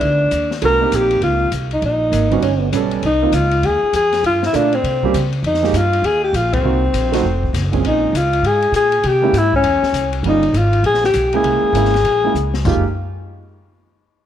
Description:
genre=jazz, small-group swing and bop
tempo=199 BPM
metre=4/4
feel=swing 62% on 8ths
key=F minor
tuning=A4 = 437 Hz
part: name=mellow alto saxophone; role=melody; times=0.0-12.8 s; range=C4 to Bb4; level=-16 LUFS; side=left 2 dB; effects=none
part: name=warm grand piano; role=accompaniment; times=0.0-12.8 s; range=Bb2 to A4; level=-21 LUFS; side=right 10 dB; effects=none
part: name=upright bass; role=bass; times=0.0-12.8 s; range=F1 to Db3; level=-20 LUFS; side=equal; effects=none
part: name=open jazz drum kit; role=drums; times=0.0-12.7 s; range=hi-hat, kick drum, ride cymbal, snare drum, splash cymbal, toms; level=-27 LUFS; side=left 3 dB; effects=none
part: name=breathy trombone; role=second line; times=2.1-3.0 s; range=Bb3 to C#4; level=-22 LUFS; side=right 11 dB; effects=none
room=moderate plate reverb, RT60 1.5 s, studio ambience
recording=1960s-style stereo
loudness=-14 LUFS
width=side -10 dB against mid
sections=0.0-7.8 A section; 7.8-12.7 B section; 12.7-13.9 C section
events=band accent 6.5; drum fill 12.3-12.7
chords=0.0 G7b13 (rootless); 0.6 Cm7; 1.8 Bbm7; 2.4 A9/G; 3.0 Ab6; 4.2 Gm7; 4.8 C5; 5.4 F9sus4; 6.6 Cm7b5; 7.2 F5; 7.8 Bbm7; 9.0 C(b9b13); 10.2 Gm7b5; 11.4 C7b9b13; 12.7 Fm11

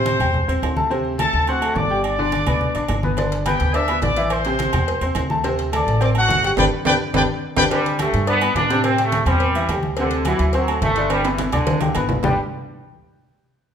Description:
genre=latin, salsa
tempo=212 BPM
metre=4/4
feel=straight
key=G major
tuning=A4 = 443 Hz
part: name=clear trumpet section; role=melody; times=0.0-7.6 s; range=F#4 to E6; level=-21 LUFS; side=left 1 dB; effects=none
part: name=clear baby grand piano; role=accompaniment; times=0.0-12.4 s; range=C3 to D6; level=-23 LUFS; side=left 1 dB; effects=none
part: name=upright bass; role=bass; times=0.0-12.4 s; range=G1 to A2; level=-24 LUFS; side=equal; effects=none
part: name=congas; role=percussion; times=0.1-12.3 s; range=none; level=-27 LUFS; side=left 1 dB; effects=none
part: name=timbales and agogo bells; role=percussion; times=0.1-12.3 s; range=none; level=-28 LUFS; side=right 6 dB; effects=none
part: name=cowbell and bongos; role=percussion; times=3.2-12.3 s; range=none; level=-29 LUFS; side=left 2 dB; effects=none
part: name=bright trombone section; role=melody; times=7.7-12.4 s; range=D3 to D4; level=-21 LUFS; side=equal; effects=none
room=moderate large studio reverb, RT60 1.3 s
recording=minimal, uncompressed stereo recording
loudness=-17 LUFS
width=side -8 dB against mid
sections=0.0-7.7 A section; 7.7-12.2 B section; 12.2-13.4 C section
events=band accent 6.6-7.7; drum fill 7.0-7.7, 11.1-12.2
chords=0.0 Am7; 0.9 D7; 2.0 G; 4.3 Am7; 5.4 D7; 6.6 G; 8.8 Am7; 10.0 D7; 11.1 G; 12.2 G5

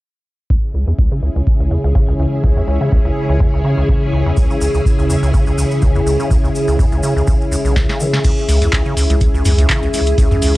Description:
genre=acid house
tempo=124 BPM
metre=4/4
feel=swing 55% on 16ths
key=C# minor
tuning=A4 = 440 Hz
part: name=string machine, full ensemble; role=sustained chords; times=0.8-10.6 s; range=C#3 to G#4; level=-20 LUFS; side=equal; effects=ensemble chorus, sidechain pumping
part: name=acid bass, square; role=riff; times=0.5-10.5 s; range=B1 to E3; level=-18 LUFS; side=equal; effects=overdrive, sidechain pumping
part: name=electronic kick drum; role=drums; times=0.5-10.3 s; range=none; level=-15 LUFS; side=equal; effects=none
part: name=warbly tape-like pad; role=texture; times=1.0-10.6 s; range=C#4 to E5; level=-23 LUFS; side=left 1 dB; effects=chorus, built-in reverb, sidechain pumping
part: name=tube shaker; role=percussion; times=4.4-10.5 s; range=none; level=-31 LUFS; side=equal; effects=none
part: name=booming analog drum machine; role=drums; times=7.8-10.5 s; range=crash cymbal, handclaps, hi-hat, snare drum, toms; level=-20 LUFS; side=equal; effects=none
part: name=saturated sub bass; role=bass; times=8.5-10.6 s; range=C#2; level=-16 LUFS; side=equal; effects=sidechain pumping
room=light reverb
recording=dry, gritty hardware recording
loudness=-12 LUFS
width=side -18 dB against mid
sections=0.5-8.2 A section; 8.2-10.6 B section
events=filter sweep on acid bass 0.5-8.2; drum fill 7.8-8.2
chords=0.5 C#m

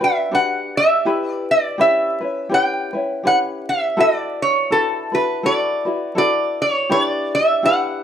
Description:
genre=hawaiian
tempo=82 BPM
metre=4/4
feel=swing 58% on 8ths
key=D major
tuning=A4 = 442 Hz
part: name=lap resonator guitar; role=melody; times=0.0-8.0 s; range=A4 to G5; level=-17 LUFS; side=right 1 dB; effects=none
part: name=tenor ukulele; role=accompaniment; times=0.0-8.0 s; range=C#4 to B4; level=-23 LUFS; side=left 2 dB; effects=none
room=studio reverb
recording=dry, close 1970s-style studio recording, vinyl crackle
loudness=-16 LUFS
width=side -9 dB against mid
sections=0.0-8.0 A section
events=none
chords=0.0 Em9/D; 1.1 C#m7b5; 4.0 D69; 6.9 G6

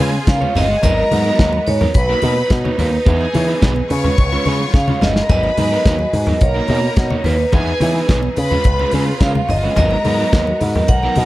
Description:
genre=disco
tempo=107 BPM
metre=4/4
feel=straight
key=G# minor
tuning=A4 = 441 Hz
part: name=warm studio violin section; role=second line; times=0.0-11.3 s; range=A#3 to C#6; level=-25 LUFS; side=left 1 dB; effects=none
part: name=electric guitar at the edge of break-up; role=accompaniment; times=0.0-11.3 s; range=F#3 to C#5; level=-22 LUFS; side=right 4 dB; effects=none
part: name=clear studio string section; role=sustained chords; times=0.0-11.3 s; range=C#3 to B4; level=-28 LUFS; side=equal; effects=none
part: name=picked electric bass with an envelope filter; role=bass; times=0.0-11.3 s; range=G1 to E3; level=-19 LUFS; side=equal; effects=none
part: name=vibraphone with hard mallets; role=melody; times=0.3-11.3 s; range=B4 to F#5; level=-20 LUFS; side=right 1 dB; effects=slapback echo
part: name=warm soul drum kit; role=drums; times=0.3-11.3 s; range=hi-hat, kick drum, snare drum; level=-18 LUFS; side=equal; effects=none
part: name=congas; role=percussion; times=0.3-11.3 s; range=none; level=-22 LUFS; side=left 2 dB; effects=none
room=light reverb, small room ambience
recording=dark, warm production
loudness=-13 LUFS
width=side -17 dB against mid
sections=0.0-11.3 A section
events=drum fill 4.7-5.3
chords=0.0 C#7; 0.8 G#m9; 1.9 Bmaj7; 3.1 Emaj7; 3.9 C#7; 5.3 G#m9; 6.4 Bmaj7; 7.5 Emaj7; 8.4 C#7; 9.8 G#m9

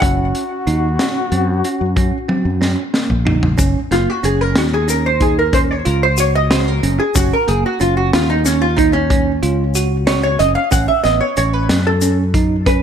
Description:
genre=progressive instrumental, band music in an uneven meter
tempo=185 BPM (eighths)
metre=11/8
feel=straight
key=Gb lydian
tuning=A4 = 440 Hz
part: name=hollow-body jazz guitar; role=melody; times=0.0-12.8 s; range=Db4 to Gb5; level=-17 LUFS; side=right 1 dB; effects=analog chorus, ping-pong delay
part: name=warm trombone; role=second line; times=0.0-2.9 s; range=Gb4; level=-23 LUFS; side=left 4 dB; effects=ping-pong delay
part: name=bell-like tine electric piano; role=arpeggios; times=0.0-12.8 s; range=Bb3 to Gb4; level=-22 LUFS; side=right 6 dB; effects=none
part: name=fretless electric bass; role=bass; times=0.0-12.8 s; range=Gb1 to Gb2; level=-18 LUFS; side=left 1 dB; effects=none
part: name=crunchy breakbeat drum kit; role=drums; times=0.0-12.8 s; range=hi-hat, kick drum, snare drum, toms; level=-18 LUFS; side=left 1 dB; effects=gated reverb
part: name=tube shaker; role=percussion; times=3.6-12.3 s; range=none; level=-25 LUFS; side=left 10 dB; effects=none
room=light reverb, small room ambience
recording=bright 1980s-style digital production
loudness=-13 LUFS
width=side -8 dB against mid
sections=0.0-3.6 A section; 3.6-12.8 B section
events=drum fill 2.3-3.6; hollow-body jazz guitar solo 3.6-12.8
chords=0.0 Gb; 3.6 Gb5; 10.7 A

